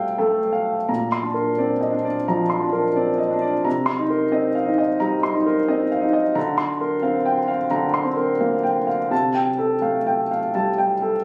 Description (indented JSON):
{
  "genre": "neoclassical minimalist piano",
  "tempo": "88 BPM",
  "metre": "4/4",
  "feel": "uneven beats, rubato",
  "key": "Bb major",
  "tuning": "A4 = 440 Hz",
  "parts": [
    { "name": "warm upright piano", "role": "solo", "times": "0.0-11.2 s", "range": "Bb2 to C6", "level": "-21 LUFS", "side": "equal", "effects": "none" }
  ],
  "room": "little or no reverb",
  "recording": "recorded on a phone in the room, club reverb, compression",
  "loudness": "-21 LUFS",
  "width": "mono",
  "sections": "0.9-11.2 A section",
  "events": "none",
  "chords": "0.0 Fadd9/C; 0.9 Bbadd9; 3.7 Cm7; 6.4 Bbadd9/D; 9.1 Fadd9/C"
}